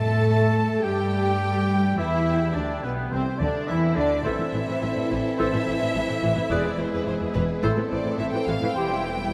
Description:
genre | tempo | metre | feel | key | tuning
quick classical-period movement for symphony orchestra | 106 BPM | 4/4 | straight | unclear | A4 = 440 Hz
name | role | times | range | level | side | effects
rich studio violin section | melody | 0.0-9.3 s | B4 to A5 | -33 LUFS | equal | none
bright large flute ensemble | second line | 0.0-9.0 s | B4 to E6 | -38 LUFS | equal | none
clear clarinet | second line | 0.0-9.0 s | B3 to A4 | -36 LUFS | equal | none
rich studio violin section | second line | 0.0-9.3 s | B3 to E5 | -35 LUFS | equal | none
warm oboe | second line | 0.0-8.9 s | B4 to A5 | -38 LUFS | equal | none
rich studio viola section | accompaniment | 0.0-9.3 s | E3 to A4 | -33 LUFS | equal | none
mellow French horn section | sustained chords | 0.0-9.0 s | B2 to C4 | -32 LUFS | equal | none
rich studio cello section | bass | 0.0-9.3 s | E2 to A3 | -33 LUFS | equal | none
rich studio double bass section | bass | 0.0-9.3 s | E1 to A2 | -30 LUFS | equal | none
timpani | percussion | 0.0-3.9 s | C3 | -42 LUFS | equal | none
room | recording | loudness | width
wet cathedral reverb, RT60 7.2 s | in a vast, echoing space | -24 LUFS | mono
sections
0.0-9.3 A section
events
none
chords
0.0 Gsus2; 2.0 Bmadd11; 3.1 C; 4.3 Am; 6.5 E; 7.6 Am; 8.8 C/E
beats
0.28 0.85 1.42 | 1.99 2.56 3.12 3.69 | 4.25 4.82 5.39 5.95 | 6.50 7.07 7.63 8.19 | 8.75 9.32

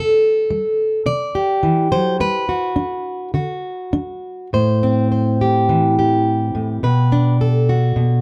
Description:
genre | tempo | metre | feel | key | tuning
folk, solo fingerstyle acoustic guitar | 105 BPM | 4/4 | rubato | A dorian | A4 = 437 Hz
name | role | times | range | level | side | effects
fingerpicked plugged-in steel-string acoustic guitar | solo | 0.0-8.2 s | A2 to D5 | -18 LUFS | equal | none
room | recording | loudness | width
light reverb | close, detailed microphones | -18 LUFS | mono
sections
0.0-4.5 A section; 4.5-8.2 B section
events
none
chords
0.0 C6; 2.2 Gmaj7; 4.5 Am7; 6.8 Bm7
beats
0.49 1.05 1.63 | 2.20 2.76 3.34 3.93 | 4.52 5.11 5.69 6.26 | 6.83 7.40 7.96

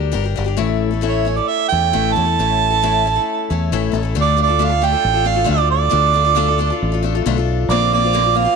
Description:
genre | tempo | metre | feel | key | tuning
folk rock and heartland rock | 136 BPM | 4/4 | straight | D minor | A4 = 440 Hz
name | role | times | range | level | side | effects
picked steel-string acoustic guitar | accompaniment | 0.0-8.6 s | A2 to Bb4 | -21 LUFS | left 11 dB | none
fingered electric bass | bass | 0.0-8.5 s | G1 to E2 | -19 LUFS | left 1 dB | none
mellow harmonica | melody | 1.1-8.6 s | C#5 to A5 | -17 LUFS | right 12 dB | none
room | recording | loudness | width
moderate echo chamber reverb, RT60 2.5 s | 1960s-style stereo with parts hard left and right | -14 LUFS | side -5 dB against mid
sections
0.0-4.2 A section; 4.2-8.6 B section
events
none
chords
0.0 Gm; 0.6 A; 4.2 Dm; 7.7 Bbadd9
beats
0.14 | 0.59 1.04 1.49 1.94 | 2.39 2.83 3.28 3.72 | 4.17 4.61 5.05 5.49 | 5.93 6.37 6.81 7.25 | 7.69 8.13

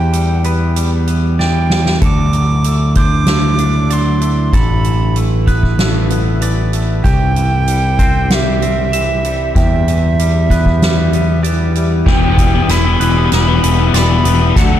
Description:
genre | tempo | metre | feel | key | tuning
post-rock | 96 BPM | 4/4 | straight | E minor | A4 = 440 Hz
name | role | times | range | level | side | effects
breathy alto recorder | melody | 0.0-14.8 s | E5 to D6 | -20 LUFS | right 4 dB | digital delay
evolving wavetable pad | sustained chords | 0.0-14.8 s | D3 to E5 | -24 LUFS | right 2 dB | chorus, built-in reverb
twangy electric guitar | arpeggios | 0.0-14.8 s | E2 to E4 | -24 LUFS | left 5 dB | digital delay
twangy electric guitar | arpeggios | 0.0-14.8 s | G4 to E5 | -27 LUFS | right 2 dB | phaser, digital delay
growling picked electric bass | bass | 0.0-14.8 s | E1 to E2 | -14 LUFS | equal | overdrive
soft-mallet drum kit | drums | 0.1-14.7 s | crash cymbal, hi-hat, kick drum, snare drum | -17 LUFS | equal | none
crunchy overdriven guitar | riff | 12.1-14.8 s | D3 to B3 | -16 LUFS | left 15 dB | none
room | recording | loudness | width
studio reverb | dark, warm production | -11 LUFS | side -11 dB against mid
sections
0.0-12.1 A section; 12.1-14.8 B section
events
drum fill 1.4-2.0, 12.1-14.8; build-up 12.1-14.8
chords
0.0 Em; 2.0 Dadd9; 4.5 Asus2; 7.1 C; 9.6 Em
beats
0.13 0.77 1.40 | 2.02 2.65 3.28 3.91 | 4.54 5.17 5.80 6.43 | 7.05 7.68 8.31 8.94 | 9.56 10.19 10.82 11.44 | 12.07 12.69 13.32 13.94 | 14.57

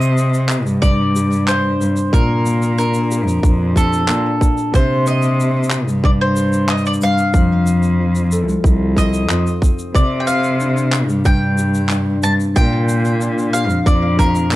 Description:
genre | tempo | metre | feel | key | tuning
folktronica | 92 BPM | 4/4 | straight | C dorian | A4 = 441 Hz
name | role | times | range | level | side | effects
bowl-back mandolin | melody | 0.0-14.6 s | A4 to A5 | -21 LUFS | equal | digital delay
concert harp | arpeggios | 0.0-14.6 s | Bb2 to A4 | -20 LUFS | left 2 dB | digital delay
rich cello | bass | 0.0-14.6 s | C2 to C3 | -17 LUFS | equal | none
shaker and handclaps | drums | 0.0-14.6 s | none | -25 LUFS | left 1 dB | none
electronic kick drum | drums | 0.8-14.3 s | none | -14 LUFS | equal | overdrive
room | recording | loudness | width
small room ambience | dark, warm production | -13 LUFS | side -16 dB against mid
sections
0.0-14.6 A section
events
none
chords
0.0 Cmadd9; 2.1 Gm7; 4.7 Cmadd9; 7.3 F; 9.9 Csus2; 12.6 Gm7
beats
0.17 0.82 1.47 | 2.12 2.77 3.43 4.08 | 4.73 5.38 6.04 6.69 | 7.34 7.99 8.64 9.30 | 9.95 10.60 11.25 11.91 | 12.56 13.21 13.86 14.52

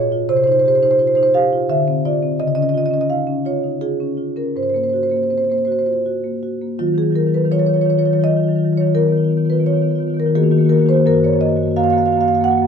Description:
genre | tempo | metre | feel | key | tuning
classical, contemporary piece for solo marimba | 84 BPM | 3/4 | rubato | Eb minor | A4 = 443 Hz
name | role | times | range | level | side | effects
marimba with soft mallets | solo | 0.0-12.7 s | Gb2 to Gb5 | -14 LUFS | equal | none
room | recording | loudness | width
light reverb | dark, warm production | -14 LUFS | side -7 dB against mid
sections
0.0-6.8 A section; 6.8-12.7 B section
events
none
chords
0.3 Cm; 1.7 Dm7; 2.4 Dbadd9; 4.6 Ab9; 6.8 Ebm9; 8.9 Bmaj9#11/D#; 10.4 Absus2/Eb; 11.1 Gbmaj7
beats
| 0.29 0.98 1.68 | 2.38 3.09 3.81 | 4.55 5.31 6.06 | 6.80 7.52 8.23 | 8.94 9.66 10.36 | 11.07 11.77 12.47

